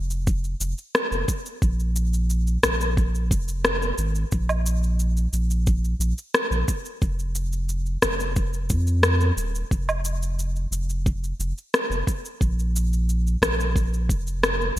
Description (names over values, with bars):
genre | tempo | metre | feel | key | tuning
sunset chillout | 89 BPM | 4/4 | straight | unclear | A4 = 439 Hz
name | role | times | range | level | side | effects
warm sub bass | bass | 0.0-14.8 s | Eb1 to F2 | -23 LUFS | equal | none
electronic cabasa, rim click and woodblock | drums | 0.1-14.8 s | none | -24 LUFS | equal | gated reverb
electronic kick drum | drums | 0.3-14.2 s | none | -24 LUFS | equal | none
room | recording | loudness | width
light reverb, digital ambience | bright 1980s-style digital production | -21 LUFS | side -14 dB against mid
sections
0.0-14.8 A section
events
none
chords
none